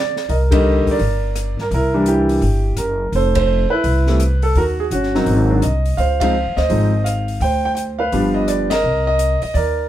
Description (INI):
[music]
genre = jazz piano trio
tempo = 169 BPM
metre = 4/4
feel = swing 64% on 8ths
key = C minor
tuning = A4 = 441 Hz
[part]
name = warm grand piano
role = melody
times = 0.0-9.9 s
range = D3 to G5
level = -17 LUFS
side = right 1 dB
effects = none
[part]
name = open jazz drum kit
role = drums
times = 0.2-9.7 s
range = hi-hat, kick drum, ride cymbal, rim click, snare drum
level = -27 LUFS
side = left 2 dB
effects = none
[part]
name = upright bass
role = bass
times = 0.3-9.9 s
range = F1 to G2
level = -18 LUFS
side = equal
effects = none
[sound]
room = moderate studio reverb, RT60 0.5 s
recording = band playing live in one room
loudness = -15 LUFS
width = side -12 dB against mid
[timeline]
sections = 0.3-9.9 A section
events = band accent 0.5, 3.3, 6.2, 8.7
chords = 0.3 Cm9; 1.7 C7; 3.1 Fmaj7; 4.6 Ebm7; 5.3 Ab7; 6.0 Dbmaj7; 7.4 Gsus4/D; 8.1 G7; 8.8 Cm9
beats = | 0.28 0.64 1.00 1.35 | 1.71 2.06 2.42 2.78 | 3.13 3.49 3.84 4.20 | 4.55 4.91 5.27 5.62 | 5.98 6.33 6.69 7.05 | 7.40 7.76 8.12 8.47 | 8.83 9.19 9.54